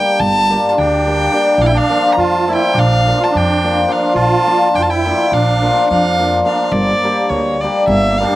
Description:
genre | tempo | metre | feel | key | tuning
balkan folk, Balkan wedding band | 210 BPM (eighths) | 9/8 | straight | unclear | A4 = 443 Hz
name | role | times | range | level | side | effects
rich violin | melody | 0.0-8.4 s | C#5 to Bb5 | -16 LUFS | right 1 dB | none
cimbalom | accompaniment | 0.0-8.4 s | F3 to G4 | -16 LUFS | left 2 dB | none
upright bass | bass | 0.2-8.2 s | G1 to F2 | -18 LUFS | right 1 dB | none
musette accordion | second line | 0.7-8.4 s | Bb3 to G4 | -19 LUFS | right 4 dB | none
room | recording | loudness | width
little or no reverb | recorded outdoors, with no room sound | -11 LUFS | side -15 dB against mid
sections
0.0-8.4 A section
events
none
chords
0.0 Gm; 1.6 Bb; 6.7 Gm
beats
0.15 0.43 0.72 1.01 1.29 | 1.58 1.86 2.15 2.44 2.72 3.01 3.29 3.58 3.86 | 4.15 4.43 4.72 5.00 5.29 5.57 5.86 6.14 6.43 | 6.71 7.00 7.28 7.56 7.85 8.13

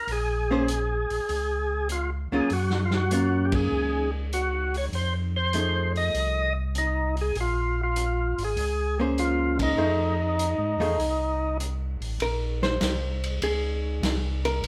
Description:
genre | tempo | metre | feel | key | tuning
soul jazz organ trio | 99 BPM | 4/4 | swing 69% on 8ths | Bb minor | A4 = 443 Hz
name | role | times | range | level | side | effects
percussive tonewheel organ | melody | 0.0-11.6 s | Eb4 to Eb5 | -30 LUFS | equal | slow rotary speaker, overdrive
mellow tonewheel organ | bass | 0.1-14.7 s | Ab1 to G#2 | -30 LUFS | equal | chorus vibrato, slow rotary speaker
vintage drum kit | drums | 0.1-14.7 s | hi-hat, kick drum, ride cymbal, snare drum | -36 LUFS | equal | none
archtop guitar, miked and amplified | accompaniment | 0.5-14.6 s | F3 to C5 | -30 LUFS | equal | none
room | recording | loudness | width
moderate studio reverb, RT60 0.9 s | band playing live in one room | -26 LUFS | mono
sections
0.0-12.2 A section; 12.2-14.7 B section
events
band accent 3.4-3.7, 9.5-9.8; hollow-body jazz guitar solo 12.2-14.7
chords
0.0 Bbm7; 2.5 Gbmaj7; 4.9 F7#9; 7.4 Bbm9; 9.8 F7#9; 12.2 Bbm9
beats
| 0.08 0.69 1.30 1.90 | 2.51 3.12 3.72 4.33 | 4.93 5.54 6.14 6.75 | 7.36 7.96 8.57 9.18 | 9.78 10.39 10.99 11.60 | 12.21 12.81 13.42 14.02 | 14.63

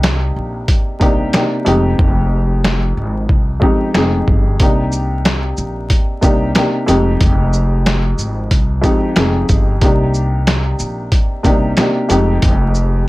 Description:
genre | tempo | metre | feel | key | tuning
hip hop, boom-bap hip-hop | 92 BPM | 4/4 | swing 57% on 16ths | C minor | A4 = 439 Hz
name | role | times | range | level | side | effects
dark upright piano | accompaniment | 0.0-13.1 s | F2 to Ab4 | -17 LUFS | equal | high-pass filter, low-pass filter, plate reverb
upright bass | bass | 0.0-13.1 s | F1 to C2 | -17 LUFS | equal | none
boom bap sampler-style drum kit | drums | 0.0-12.9 s | hi-hat, kick drum, shaker, snare drum | -15 LUFS | equal | none
room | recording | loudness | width
light reverb | vinyl crackle | -12 LUFS | side -19 dB against mid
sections
0.0-13.1 A section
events
hi-hats muted 2.0-4.6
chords
0.0 Cm9; 1.7 Fm9; 4.6 Cm9; 6.9 Fm9; 9.8 Cm9; 12.1 Fm9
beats
0.04 0.69 1.34 | 1.99 2.64 3.30 3.95 | 4.60 5.25 5.91 6.56 | 7.21 7.86 8.51 9.17 | 9.82 10.47 11.12 11.78 | 12.43 13.08

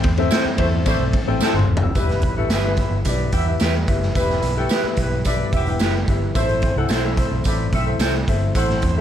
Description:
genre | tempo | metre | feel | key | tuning
uptempo 1960s-style soul | 109 BPM | 4/4 | straight | unclear | A4 = 440 Hz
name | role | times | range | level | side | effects
warm upright piano | accompaniment | 0.0-9.0 s | C4 to E6 | -25 LUFS | left 5 dB | none
percussive tonewheel organ | sustained chords | 0.0-9.0 s | E3 to C4 | -31 LUFS | right 2 dB | slow rotary speaker
vintage muted fingered electric bass | bass | 0.0-9.0 s | E1 to E2 | -22 LUFS | right 1 dB | none
raw garage drum kit | drums | 0.0-9.0 s | hi-hat, kick drum, ride cymbal, snare drum, toms | -21 LUFS | equal | none
electric guitar at the edge of break-up | stabs | 0.3-8.1 s | E4 to C5 | -27 LUFS | right 2 dB | spring reverb
tambourine | percussion | 0.3-8.7 s | none | -35 LUFS | right 4 dB | none
mellow horn section | second line | 0.6-9.0 s | E3 to E5 | -26 LUFS | right 2 dB | none
room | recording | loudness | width
little or no reverb | none | -17 LUFS | side -10 dB against mid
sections
0.0-2.0 A section; 2.0-9.0 B section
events
band accent 0.0-2.0; drum fill 1.4-2.0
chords
0.0 Am; 2.0 Em; 6.4 Am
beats
0.31 0.86 1.41 | 1.96 2.51 3.06 3.61 | 4.16 4.71 5.25 5.80 | 6.35 6.90 7.45 8.00 | 8.55

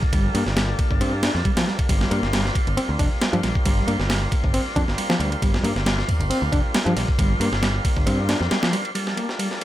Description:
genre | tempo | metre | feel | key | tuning
breakbeat, breaks | 136 BPM | 4/4 | swing 54% on 16ths | G minor | A4 = 439 Hz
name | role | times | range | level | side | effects
tonewheel organ | sustained chords | 0.0-9.6 s | G3 to C5 | -28 LUFS | left 1 dB | slow rotary speaker, vintage 12-bit sampler grit, sidechain pumping
breakbeat sampler-style drum kit | drums | 0.0-9.6 s | kick drum, ride cymbal, snare drum | -22 LUFS | equal | high-pass filter on kick, high-pass filter on cymbals, high-pass filter on snare
reed electric piano | riff | 0.1-9.5 s | F3 to D4 | -26 LUFS | equal | fast tremolo, low-pass filter, tape echo
picked electric bass | bass | 0.1-8.5 s | F1 to G2 | -24 LUFS | equal | none
room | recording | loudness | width
light reverb | none | -19 LUFS | side -14 dB against mid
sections
0.0-8.9 A section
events
none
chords
0.0 Gm9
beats
| 0.13 0.57 1.01 1.45 | 1.89 2.33 2.77 3.21 | 3.66 4.10 4.54 4.98 | 5.42 5.86 6.30 6.74 | 7.19 7.63 8.07 8.51 | 8.95 9.39

